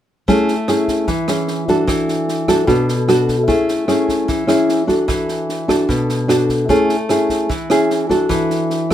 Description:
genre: bossa nova.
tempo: 150 BPM.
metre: 4/4.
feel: straight.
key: A major.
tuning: A4 = 440 Hz.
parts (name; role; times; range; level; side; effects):
nylon-string guitar; accompaniment; 0.3-8.9 s; B2 to A4; -14 LUFS; equal; none.
compact cocktail drum kit; drums; 0.3-8.9 s; kick drum, rim click, snare drum; -25 LUFS; right 1 dB; none.
room: moderate studio reverb, RT60 0.8 s.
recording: minimal, uncompressed stereo recording.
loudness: -14 LUFS.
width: side -11 dB against mid.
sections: 0.3-8.9 A section.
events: none.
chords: 0.3 Amaj7; 1.9 E9sus4; 3.5 Amaj7; 5.1 E9sus4; 6.7 Amaj7; 8.3 E9sus4.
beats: | 0.28 0.68 1.08 1.48 | 1.88 2.28 2.68 3.08 | 3.48 3.89 4.29 4.69 | 5.09 5.49 5.89 6.29 | 6.70 7.10 7.50 7.90 | 8.30 8.70.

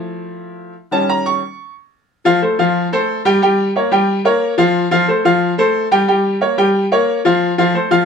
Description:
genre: latin.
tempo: 180 BPM.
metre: 4/4.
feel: straight.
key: F major.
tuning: A4 = 440 Hz.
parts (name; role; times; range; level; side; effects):
bright upright piano; solo; 0.0-8.1 s; Eb3 to Db6; -13 LUFS; equal; none.
room: moderate studio reverb, RT60 0.5 s.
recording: none.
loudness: -13 LUFS.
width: side -6 dB against mid.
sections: 0.0-2.1 A section; 2.1-8.1 B section.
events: upright piano solo 0.0-2.1.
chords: 0.0 Fmaj7; 0.8 Eb7; 2.1 F; 3.4 Bbm6; 4.7 F; 6.1 Bbm6; 7.4 F.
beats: 0.10 0.43 | 0.76 1.09 1.42 1.75 | 2.09 2.42 2.75 3.08 | 3.42 3.75 4.08 4.41 | 4.75 5.08 5.41 5.74 | 6.08 6.41 6.74 7.08 | 7.41 7.74.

